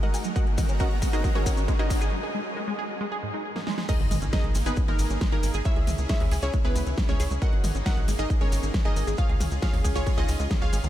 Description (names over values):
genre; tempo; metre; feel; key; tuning
uplifting trance; 136 BPM; 4/4; straight; unclear; A4 = 440 Hz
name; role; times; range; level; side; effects
wide unison pluck; melody; 0.0-10.8 s; A#3 to F#5; -33 LUFS; right 1 dB; cassette tape, sidechain pumping, tape echo
supersaw pad; sustained chords; 0.0-10.9 s; D#3 to A#5; -37 LUFS; equal; lush chorus, sidechain pumping
tight sequenced synth; arpeggios; 0.0-10.9 s; G#2 to G#4; -34 LUFS; right 1 dB; chorus, phaser, cassette tape, sidechain pumping, ping-pong delay
big-room dance drum kit; drums; 0.0-10.9 s; crash cymbal, hi-hat, snare drum, toms; -35 LUFS; equal; none
riser and impact; sound effects; 0.0-5.7 s; none; -36 LUFS; equal; none
maracas; percussion; 0.1-10.9 s; none; -41 LUFS; left 2 dB; none
electronic kick drum; drums; 0.4-10.6 s; none; -24 LUFS; equal; none
plucky unison lead; second line; 3.9-10.8 s; A#4 to F#5; -37 LUFS; left 2 dB; phaser, sidechain pumping, ping-pong delay
tight sequencer bass; bass; 4.0-10.9 s; G#1 to D#2; -28 LUFS; equal; sidechain pumping
room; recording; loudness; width
light reverb; none; -23 LUFS; side -13 dB against mid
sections
0.0-3.9 A section; 3.9-10.9 B section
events
build-up 0.0-3.9; drum fill 0.0-2.1, 3.6-3.9; riser 0.0-2.1; filter sweep on synth arpeggio sound 0.0-3.9; break 2.1-3.9; drop 3.9-10.9; impact 3.9-5.7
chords
0.4 D#m; 3.9 G#sus2; 5.7 C#m; 7.4 G#sus2; 9.2 C#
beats
| 0.36 0.80 1.24 1.68 | 2.12 2.57 3.01 3.45 | 3.89 4.33 4.77 5.21 | 5.65 6.09 6.54 6.98 | 7.42 7.86 8.30 8.74 | 9.18 9.62 10.07 10.51